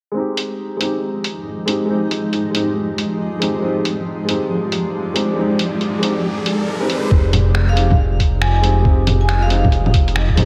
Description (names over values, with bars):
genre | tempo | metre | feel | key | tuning
future garage | 138 BPM | 4/4 | swing 64% on 16ths | F dorian | A4 = 440 Hz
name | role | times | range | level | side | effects
felt-muted upright piano | accompaniment | 0.1-10.4 s | Ab3 to G4 | -24 LUFS | equal | sidechain pumping, low-pass filter, analog delay
granular cloud pad | sustained chords | 0.9-10.4 s | F3 to Eb5 | -25 LUFS | equal | built-in reverb, sidechain pumping
lo-fi sampler-style drum kit | drums | 0.4-10.4 s | bongos, finger snaps, hi-hat | -23 LUFS | equal | none
riser | sound effects | 4.7-7.1 s | none | -32 LUFS | equal | none
dark detuned saw bass | bass | 7.1-10.4 s | F1 | -18 LUFS | equal | sidechain pumping
electronic kick drum | drums | 7.1-10.4 s | none | -17 LUFS | equal | none
vibraphone with hard mallets | melody | 7.7-9.6 s | F5 to Ab5 | -26 LUFS | equal | diffuse ambient delay
room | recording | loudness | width
moderate lush hall reverb, RT60 1.9 s, digital ambience | dreamy mix soaked in reverb | -18 LUFS | mono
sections
0.2-7.1 A section; 7.1-10.4 B section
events
filter sweep on felt piano 0.2-7.1; riser 4.8-7.1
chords
0.2 Fm7